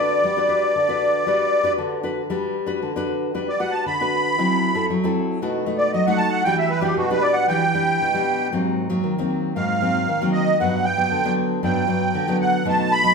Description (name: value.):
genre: samba.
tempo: 116 BPM.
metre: 4/4.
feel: straight.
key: G major.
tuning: A4 = 441 Hz.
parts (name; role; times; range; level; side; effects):
musette accordion; melody; 0.0-13.1 s; F#4 to B5; -20 LUFS; right 1 dB; none.
nylon-string guitar; accompaniment; 0.0-13.1 s; G2 to B4; -22 LUFS; left 1 dB; none.
room: wet large studio reverb, RT60 1.2 s.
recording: band playing live in one room.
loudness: -18 LUFS.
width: side -4 dB against mid.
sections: 0.0-2.3 A section; 2.3-13.1 B section.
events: accordion solo 2.3-13.1.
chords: 0.0 Gmaj7; 4.4 F#m7b5; 5.4 B7; 6.5 Em9; 8.5 Ab9; 10.6 Gmaj7.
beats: | 0.23 0.75 1.27 1.79 | 2.31 2.82 3.34 3.86 | 4.38 4.90 5.42 5.93 | 6.45 6.97 7.49 8.01 | 8.52 9.04 9.56 10.08 | 10.60 11.11 11.63 12.15 | 12.67.